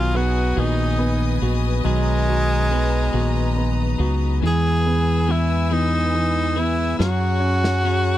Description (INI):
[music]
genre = six-eight pop ballad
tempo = 47 BPM (dotted quarters)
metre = 6/8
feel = straight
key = unclear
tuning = A4 = 440 Hz
[part]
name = bright tenor saxophone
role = melody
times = 0.0-8.2 s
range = G#3 to G#4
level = -23 LUFS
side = right 1 dB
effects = none
[part]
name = clear concert grand piano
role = accompaniment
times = 0.0-8.2 s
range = E3 to F#4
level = -26 LUFS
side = right 3 dB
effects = none
[part]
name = rich studio string section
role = sustained chords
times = 0.0-8.2 s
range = G#4 to E6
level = -31 LUFS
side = left 4 dB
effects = none
[part]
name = clean electric guitar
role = arpeggios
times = 0.0-8.2 s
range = B2 to G#4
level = -28 LUFS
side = left 13 dB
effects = none
[part]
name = fingered electric bass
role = bass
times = 0.0-8.2 s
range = A#1 to F#2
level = -21 LUFS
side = equal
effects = none
[part]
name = snare drum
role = drums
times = 7.0-7.8 s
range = none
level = -25 LUFS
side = equal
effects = none
[sound]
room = little or no reverb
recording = dry, close 1970s-style studio recording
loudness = -18 LUFS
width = side -13 dB against mid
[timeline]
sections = 0.0-4.4 A section; 4.4-8.2 B section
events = drum fill 7.0-8.2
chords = 0.0 B6; 4.4 E; 7.0 F#sus2